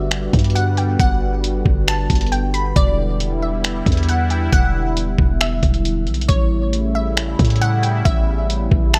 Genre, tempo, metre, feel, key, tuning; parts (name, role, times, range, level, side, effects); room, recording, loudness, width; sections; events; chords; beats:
hip hop, atmospheric cloud-rap; 136 BPM; 4/4; half-time; A4 = 440 Hz
glassy wavetable pluck; melody; 0.0-9.0 s; C#5 to B5; -27 LUFS; equal; chorus, tape echo
sweeping resonant pad; sustained chords; 0.0-9.0 s; C#3 to F#4; -26 LUFS; equal; chorus, sidechain pumping
warm 808-style bass; bass; 0.0-9.0 s; E1 to A2; -22 LUFS; equal
lo-fi sampler-style drum kit; drums; 0.1-9.0 s; finger snaps, hi-hat, kick drum; -20 LUFS; equal
little or no reverb; -18 LUFS; mono
0.0-9.0 A section
0.0 Gmaj7; 2.8 Em7; 6.3 A7
0.11 0.55 | 1.00 1.44 1.88 2.32 | 2.76 3.20 3.64 4.08 | 4.53 4.97 5.41 5.85 | 6.29 6.73 7.17 7.61 | 8.05 8.50 8.94